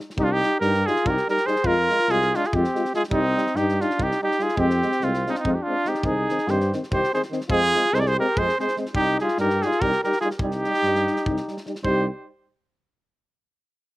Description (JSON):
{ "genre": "balkan folk, Balkan brass band", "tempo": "288 BPM (eighths)", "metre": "7/8", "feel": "straight", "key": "C minor", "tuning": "A4 = 440 Hz", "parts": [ { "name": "loose indie drum kit", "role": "percussion", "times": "0.0-12.1 s", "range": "kick drum, snare drum", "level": "-32 LUFS", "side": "equal", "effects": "none" }, { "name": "warm trumpet", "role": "melody", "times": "0.2-12.1 s", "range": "Eb4 to D5", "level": "-23 LUFS", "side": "right 2 dB", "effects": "none" }, { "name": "mellow flugelhorn", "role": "second line", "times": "0.2-12.1 s", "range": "C4 to Bb4", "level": "-27 LUFS", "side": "left 3 dB", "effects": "slapback echo" }, { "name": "mellow trombone", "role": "accompaniment", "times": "0.2-12.1 s", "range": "Eb3 to Ab3", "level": "-31 LUFS", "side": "right 3 dB", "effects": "none" }, { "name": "warm euphonium", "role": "accompaniment", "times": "0.2-12.1 s", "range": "C4 to F4", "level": "-30 LUFS", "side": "left 4 dB", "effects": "none" }, { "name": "mellow tuba", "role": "bass", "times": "0.2-12.1 s", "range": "C2 to G2", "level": "-26 LUFS", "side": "equal", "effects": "none" } ], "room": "little or no reverb", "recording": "recorded outdoors, with no room sound", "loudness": "-20 LUFS", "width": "side -18 dB against mid", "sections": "0.2-11.8 A section; 11.8-13.3 B section", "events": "none", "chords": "0.2 Cm; 1.6 Fm; 3.1 Cm; 4.6 Fm; 6.0 Cm; 7.5 Fm; 8.9 Cm", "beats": "| 0.18 0.39 0.60 0.81 1.02 1.23 1.44 | 1.65 1.86 2.07 2.28 2.49 2.70 2.90 | 3.11 3.32 3.53 3.74 3.95 4.16 4.37 | 4.58 4.78 4.99 5.20 5.41 5.62 5.83 | 6.04 6.24 6.45 6.66 6.87 7.08 7.28 | 7.49 7.70 7.91 8.11 8.32 8.53 8.74 | 8.95 9.15 9.36 9.57 9.78 9.98 10.19 | 10.40 10.61 10.81 11.02 11.23 11.43 11.64 | 11.85 12.05" }